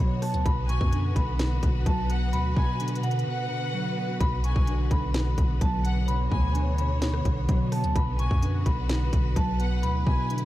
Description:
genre	hip hop, trap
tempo	128 BPM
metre	4/4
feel	half-time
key	B dorian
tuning	A4 = 440 Hz
part	vibraphone with medium hard mallets	melody	0.0-10.4 s	F#5 to C#6	-33 LUFS	equal	low-pass filter, digital delay
part	mellow electric guitar	accompaniment	0.0-10.4 s	B2 to B3	-30 LUFS	right 2 dB	ensemble chorus, low-pass filter
part	warm symphonic string section	sustained chords	0.0-10.4 s	D3 to C#5	-35 LUFS	left 1 dB	none
part	long sustained 808-style bass	bass	0.0-10.4 s	B1 to B2	-27 LUFS	equal	none
part	trap drum kit	drums	0.2-10.4 s	hi-hat, kick drum, rim click, snare drum	-26 LUFS	equal	none
part	warm studio violin section	second line	0.7-10.3 s	F#5 to G#5	-38 LUFS	left 2 dB	digital delay
room	small room ambience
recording	dark, warm production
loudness	-23 LUFS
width	side -15 dB against mid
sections	0.0-10.4 A section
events	break 3.3-4.2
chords	0.0 Bm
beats	| 0.46 0.93 1.39 1.86 | 2.33 2.80 3.27 3.74 | 4.21 4.67 5.14 5.61 | 6.08 6.55 7.02 7.49 | 7.96 8.43 8.89 9.36 | 9.83 10.30

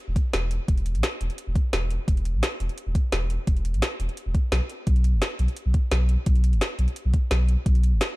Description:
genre	liquid drum and bass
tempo	172 BPM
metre	4/4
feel	straight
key	unclear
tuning	A4 = 440 Hz
part	warm sub bass	bass	0.1-8.0 s	E1 to B1	-23 LUFS	equal	none
part	electronic kick drum	drums	0.2-7.7 s	none	-22 LUFS	equal	overdrive
part	garage drum kit	drums	0.2-8.1 s	hi-hat, snare drum	-29 LUFS	equal	overdrive
room	digital ambience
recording	dark, warm production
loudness	-22 LUFS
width	side -20 dB against mid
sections	0.0-8.2 A section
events	none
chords	none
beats	0.34 | 0.68 1.03 1.38 1.73 | 2.08 2.43 2.78 3.12 | 3.47 3.82 4.17 4.52 | 4.87 5.22 5.57 5.92 | 6.26 6.61 6.96 7.31 | 7.66 8.01

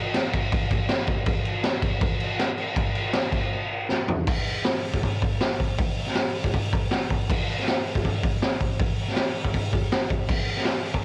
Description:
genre	rock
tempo	160 BPM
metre	4/4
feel	straight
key	none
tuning	none
part	raw garage drum kit	drums	0.1-11.0 s	crash cymbal, hi-hat, kick drum, snare drum, toms	-25 LUFS	equal	cassette tape
room	light reverb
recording	home recording on cassette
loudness	-25 LUFS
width	mono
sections	0.0-4.3 A section; 4.3-11.0 B section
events	drum fill 3.9-4.3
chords	none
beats	0.15 0.52 0.90 | 1.27 1.65 2.03 2.40 | 2.78 3.15 3.53 3.91 | 4.28 4.66 5.04 5.41 | 5.79 6.16 6.54 6.92 | 7.29 7.67 8.04 8.42 | 8.80 9.17 9.55 9.93 | 10.30 10.68

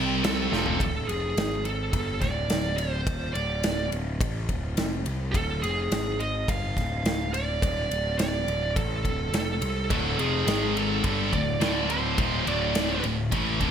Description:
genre	heavy metal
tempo	105 BPM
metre	4/4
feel	straight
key	D phrygian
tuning	A4 = 440 Hz
part	rich studio string section	sustained chords	0.0-0.8 s	C4 to G5	-40 LUFS	left 1 dB	none
part	heavy high-gain guitar	riff	0.0-0.8, 9.9-13.7 s	D2 to C4	-30 LUFS	right 13 dB	distortion
part	scooped high-gain guitar	riff	0.0-0.8, 9.9-13.7 s	D2 to C4	-29 LUFS	left 11 dB	distortion
part	thick fuzz guitar	riff	0.0-0.8 s	F2 to C4	-32 LUFS	right 2 dB	distortion
part	fuzz picked electric bass	bass	0.0-13.7 s	D1 to C2	-30 LUFS	equal	overdrive
part	high-gain lead guitar	melody	0.2-13.0 s	G#4 to F5	-30 LUFS	right 3 dB	distortion, ping-pong delay
part	big rock drum kit	drums	0.2-13.7 s	crash cymbal, kick drum, ride cymbal, snare drum, toms	-29 LUFS	equal	gated reverb
room	light reverb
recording	bright 1980s-style digital production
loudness	-24 LUFS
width	side -8 dB against mid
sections	0.8-13.7 A section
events	drum fill 0.5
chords	0.0 C5; 0.5 Dm; 1.4 N.C.; 1.9 Dm; 5.9 G#5; 6.5 Dm; 10.5 G#5; 11.0 D5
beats	0.23 | 0.80 1.37 1.94 2.50 | 3.07 3.64 4.21 4.78 | 5.35 5.92 6.48 7.05 | 7.62 8.19 8.76 9.33 | 9.90 10.47 11.04 11.61 | 12.18 12.75 13.32

